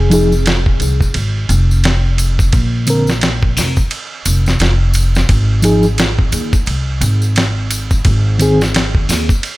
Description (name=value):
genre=trip hop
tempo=87 BPM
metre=4/4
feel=swing 59% on 16ths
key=F dorian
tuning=A4 = 440 Hz
part: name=upright bass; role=bass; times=0.0-9.3 s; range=F1 to Eb2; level=-14 LUFS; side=equal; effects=tube saturation
part: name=mellow reed electric piano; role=accompaniment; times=0.1-8.6 s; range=D3 to Bb4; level=-16 LUFS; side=equal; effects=fast tremolo, vintage 12-bit sampler grit, tape echo
part: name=dusty soul sampler-style drum kit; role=drums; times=0.1-9.6 s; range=hi-hat, kick drum, ride cymbal, snare drum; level=-16 LUFS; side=equal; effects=small room ambience
part: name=tambourine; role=percussion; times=0.1-9.6 s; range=none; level=-25 LUFS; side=equal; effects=none
room=digital ambience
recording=none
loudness=-11 LUFS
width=side -19 dB against mid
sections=0.0-9.6 A section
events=none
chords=0.0 Fm; 2.5 Bb5; 5.3 Fm7/Ab (rootless); 8.1 Ab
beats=0.47 1.16 1.85 | 2.54 3.23 3.92 4.60 | 5.29 5.98 6.67 7.36 | 8.05 8.74 9.43